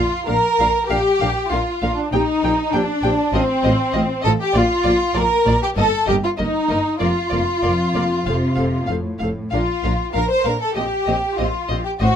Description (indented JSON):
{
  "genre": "quick classical-period movement for string orchestra",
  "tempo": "97 BPM",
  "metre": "4/4",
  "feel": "straight",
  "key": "Bb major",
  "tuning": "A4 = 441 Hz",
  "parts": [
    { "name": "warm studio violin section", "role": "melody", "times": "0.0-12.1 s", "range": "D5 to G5", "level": "-28 LUFS", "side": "left 2 dB", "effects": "none" },
    { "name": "rich studio violin section", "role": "second line", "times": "0.0-12.2 s", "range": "C4 to C5", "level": "-18 LUFS", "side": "equal", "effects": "none" },
    { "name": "rich studio viola section", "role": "accompaniment", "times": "0.0-12.1 s", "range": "Bb3 to C5", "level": "-27 LUFS", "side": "left 1 dB", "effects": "none" },
    { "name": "rich studio cello section", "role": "bass", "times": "0.0-12.1 s", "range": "F2 to C3", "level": "-25 LUFS", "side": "equal", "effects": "none" },
    { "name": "rich studio double bass section", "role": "bass", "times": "0.0-12.1 s", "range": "F1 to Bb1", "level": "-24 LUFS", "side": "right 1 dB", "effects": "none" }
  ],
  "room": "moderate studio reverb, RT60 0.6 s",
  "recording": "none",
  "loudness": "-16 LUFS",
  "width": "side -8 dB against mid",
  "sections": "0.0-12.2 A section",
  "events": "none",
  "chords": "0.0 Bb; 2.1 Cm7/Bb; 3.3 F/A; 4.5 Bb5; 5.8 Eb/G; 7.0 Bb5/F; 8.3 F; 9.5 Bb; 10.8 C7(no3)/Bb"
}